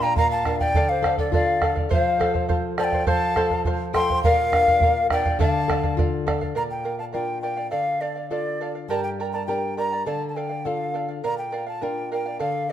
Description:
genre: andean folk, Andean ensemble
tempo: 103 BPM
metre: 2/4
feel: straight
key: unclear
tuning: A4 = 443 Hz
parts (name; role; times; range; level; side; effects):
- bright large quena; melody; 0.0-12.7 s; D5 to C6; -24 LUFS; left 1 dB; none
- polished pan flute; second line; 0.0-5.9 s; A4 to G5+21c; -28 LUFS; left 4 dB; none
- charango; accompaniment; 0.0-12.7 s; G4 to Bb5; -28 LUFS; right 5 dB; none
- flamenco guitar; accompaniment; 0.0-12.7 s; G2 to Bb4; -29 LUFS; left 5 dB; none
- bombo; percussion; 0.2-6.6 s; none; -24 LUFS; right 2 dB; none
room: moderate recital hall reverb, RT60 1.6 s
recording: minimal, uncompressed stereo recording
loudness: -20 LUFS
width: side -10 dB against mid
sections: 0.0-6.6 A section; 6.6-12.7 B section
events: none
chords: 0.0 Bb; 0.7 Dm; 1.9 F; 4.2 Bb; 5.4 Dm; 6.6 Bb; 7.7 Dm; 8.9 Gm; 10.1 Dm; 11.2 Bb

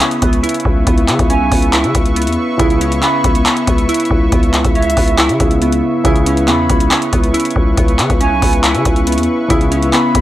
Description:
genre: hip hop, trap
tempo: 139 BPM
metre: 4/4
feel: half-time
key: C# minor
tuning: A4 = 440 Hz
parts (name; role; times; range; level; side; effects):
- felt-muted upright piano; accompaniment; 0.0-10.2 s; C#3 to G#4; -20 LUFS; left 1 dB; none
- warm analog pad; sustained chords; 0.0-10.2 s; B4 to C#6; -23 LUFS; left 1 dB; chorus
- glassy digital keys; arpeggios; 0.0-10.2 s; B3 to E4; -17 LUFS; right 1 dB; chorus, tape echo
- booming analog drum machine; drums; 0.0-10.2 s; handclaps, hi-hat, kick drum; -15 LUFS; equal; none
- growling 808-style bass; bass; 0.2-10.2 s; B1 to C#3; -17 LUFS; equal; none
- concert flute; second line; 1.3-10.2 s; E5 to B5; -21 LUFS; right 3 dB; tape echo
room: little or no reverb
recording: dry, gritty hardware recording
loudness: -11 LUFS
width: side -14 dB against mid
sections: 0.0-10.2 A section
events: none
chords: 0.0 C#m7

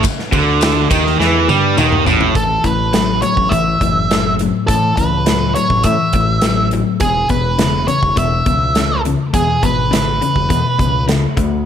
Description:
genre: classic rock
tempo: 103 BPM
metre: 4/4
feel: straight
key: A major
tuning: A4 = 440 Hz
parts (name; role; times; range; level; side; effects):
- crunchy overdriven guitar; riff; 0.0-11.6 s; E2 to A3; -18 LUFS; left 7 dB; none
- distorted electric guitar; riff; 0.0-2.3 s; A2 to G3; -16 LUFS; right 14 dB; overdrive
- big rock drum kit; drums; 0.0-11.5 s; hi-hat, kick drum, ride cymbal, snare drum, toms; -19 LUFS; equal; none
- tambourine; percussion; 0.0-2.2 s; none; -31 LUFS; left 10 dB; none
- growling fingered electric bass; bass; 0.3-11.7 s; E1 to A2; -20 LUFS; equal; overdrive
- octave-fuzz lead guitar; melody; 2.4-11.1 s; G#4 to E5; -17 LUFS; right 2 dB; distortion
room: light reverb, small room ambience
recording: none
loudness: -12 LUFS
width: side -8 dB against mid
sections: 0.0-2.4 A section; 2.4-11.7 B section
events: drum fill 1.2-2.4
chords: 0.0 A5; 2.4 Aadd9; 7.0 E

